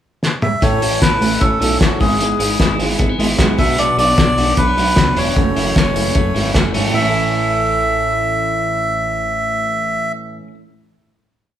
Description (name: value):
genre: jangly indie pop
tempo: 152 BPM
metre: 4/4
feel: straight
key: A major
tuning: A4 = 441 Hz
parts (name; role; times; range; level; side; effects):
- cloth-damped thuddy drum kit; drums; 0.2-6.8 s; hi-hat, kick drum, snare drum, toms; -17 LUFS; equal; none
- melodica; melody; 0.4-10.1 s; F#4 to E5; -18 LUFS; equal; none
- fingerpicked steel-string acoustic guitar; accompaniment; 0.6-10.6 s; F#2 to A4; -23 LUFS; right 6 dB; none
- twelve-string electric guitar; arpeggios; 0.6-10.5 s; F#2 to E4; -23 LUFS; left 3 dB; none
- chorused synth bass; bass; 0.6-10.1 s; E1 to C#2; -22 LUFS; equal; none
room: moderate large studio reverb, RT60 1.1 s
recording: band playing live in one room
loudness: -13 LUFS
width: side -10 dB against mid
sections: 0.0-0.6 pickup bar; 0.6-6.9 verse; 6.9-10.1 final chord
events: drum fill 0.2-0.6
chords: 0.0 N.C.; 0.6 A; 2.0 E/G#; 3.6 Bm; 5.4 F#m7; 6.9 A